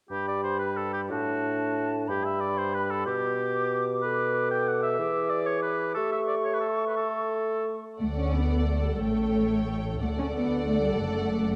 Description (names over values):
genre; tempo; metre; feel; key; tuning
classical, dramatic, fast romantic movement for symphony orchestra; 182 BPM; 3/4; rubato; G major, D major from 4.0 s; A4 = 440 Hz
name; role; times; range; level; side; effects
clear clarinet; second line; 0.1-7.8 s; D4 to A4; -35 LUFS; equal; none
clear oboe; second line; 0.1-7.6 s; F#4 to G5; -34 LUFS; equal; none
hollow concert flute; second line; 0.1-7.8 s; A5 to D6; -36 LUFS; equal; none
mellow bassoon; accompaniment; 0.1-7.8 s; G2 to A3; -32 LUFS; equal; none
warm studio violin section; melody; 8.0-11.6 s; F#5 to G5; -45 LUFS; equal; none
warm symphonic violin section; second line; 8.0-11.6 s; C#5 to D5; -39 LUFS; equal; none
dark symphonic viola section; accompaniment; 8.0-11.6 s; A4; -35 LUFS; equal; none
rich symphonic double bass section; bass; 8.0-11.6 s; F#1 to D2; -32 LUFS; equal; none
warm symphonic cello section; bass; 8.0-11.6 s; G3 to C#4; -30 LUFS; equal; none
room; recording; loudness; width
moderate concert hall reverb, RT60 1.8 s; dark, warm production; -28 LUFS; mono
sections
0.1-8.0 A section; 8.0-11.6 B section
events
none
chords
0.1 G; 1.1 D/A; 2.1 G; 3.1 G/B; 5.0 E7; 6.0 A7; 8.0 D; 9.0 A7; 10.0 D; 11.0 D/F#